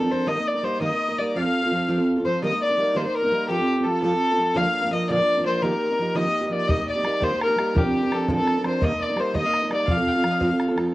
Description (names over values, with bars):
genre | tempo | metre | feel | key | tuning
celtic folk, Celtic jig | 112 BPM (dotted quarters) | 6/8 | straight | unclear | A4 = 440 Hz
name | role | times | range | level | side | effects
warm fiddle | melody | 0.0-10.6 s | G4 to F5 | -23 LUFS | left 1 dB | cassette tape
warm fiddle | second line | 0.0-10.6 s | G4 to G5 | -32 LUFS | left 4 dB | cassette tape
picked steel-string acoustic guitar | accompaniment | 0.0-10.9 s | Bb2 to Bb4 | -24 LUFS | right 2 dB | cassette tape
bodhran | percussion | 6.7-10.9 s | none | -27 LUFS | equal | none
room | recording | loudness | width
light reverb, small room ambience | home recording on cassette | -20 LUFS | side -17 dB against mid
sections
0.0-2.4 A section; 2.4-10.9 A section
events
none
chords
0.3 Eb; 1.4 F; 2.4 Eb; 3.5 F; 4.6 Bb; 5.6 Ebadd9; 6.7 Eb; 7.8 Bbadd9; 8.8 Eb; 9.9 F